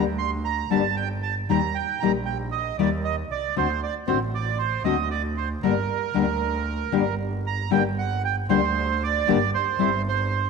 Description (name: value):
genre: tango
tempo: 116 BPM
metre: 4/4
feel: rubato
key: G harmonic minor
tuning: A4 = 443 Hz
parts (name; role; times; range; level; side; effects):
- bandoneon; melody; 0.0-10.5 s; Bb4 to C6; -26 LUFS; right 12 dB; none
- nylon-string guitar; accompaniment; 0.0-9.9 s; D3 to G4; -25 LUFS; left 8 dB; none
- clear double bass; bass; 0.0-10.5 s; G1 to Eb2; -29 LUFS; right 2 dB; none
room: wet echo chamber reverb, RT60 2.1 s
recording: 1960s-style stereo with parts hard left and right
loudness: -22 LUFS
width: side -4 dB against mid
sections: 0.0-7.7 A section; 7.7-10.5 A section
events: none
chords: 0.0 Gm; 1.5 Eb; 3.6 D7; 5.6 Gm; 9.8 C5/G